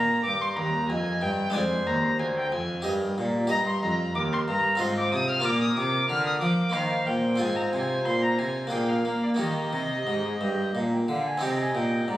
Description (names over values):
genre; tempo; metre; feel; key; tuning
classical, baroque-style sonata movement with continuo; 92 BPM; 3/4; straight; Eb major from 3.5 s; A4 = 442 Hz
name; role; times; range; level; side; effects
dark violin; melody; 0.0-12.2 s; D5 to F6; -28 LUFS; left 1 dB; none
mellow wooden flute; second line; 0.0-12.2 s; G4 to Bb5; -32 LUFS; right 1 dB; none
harpsichord; accompaniment; 0.0-12.2 s; D2 to Eb5; -29 LUFS; equal; none
rich cello; bass; 0.0-12.2 s; D2 to Bb3; -29 LUFS; equal; none
room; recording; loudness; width
moderate recital hall reverb, RT60 1.6 s; recorded on a phone in the room, studio reverb, compression; -23 LUFS; side -14 dB against mid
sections
0.0-11.4 A section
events
none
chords
0.0 Eb; 1.5 Ddim; 2.9 Eb/G; 3.5 Eb; 4.8 Fm7/Ab; 5.4 Bb; 6.7 Eb; 7.4 Fm/Ab; 8.7 Bb7; 9.4 Eb; 11.4 Cm